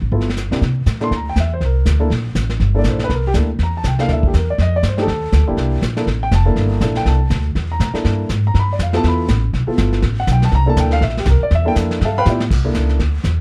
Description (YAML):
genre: jazz, small-group swing and bop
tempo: 242 BPM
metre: 4/4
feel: swing 58% on 8ths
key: C mixolydian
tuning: A4 = 440 Hz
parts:
  - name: upright bass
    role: bass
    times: 0.0-13.4 s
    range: F1 to C3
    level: -18 LUFS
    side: equal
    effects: none
  - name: warm baby grand piano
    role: accompaniment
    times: 0.1-13.0 s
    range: C3 to C6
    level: -23 LUFS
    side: equal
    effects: none
  - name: vintage brush drum kit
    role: drums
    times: 0.1-13.4 s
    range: brushed snare drum, crash cymbal, hi-hat, kick drum, snare drum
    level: -26 LUFS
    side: equal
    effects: none
room: little or no reverb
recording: dark, warm production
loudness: -17 LUFS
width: mono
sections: 0.6-12.5 A section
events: drum fill 12.3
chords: 0.1 G13; 0.6 C13; 4.6 F13; 5.6 C13; 8.5 G13; 10.5 C13; 12.0 G13; 12.5 C13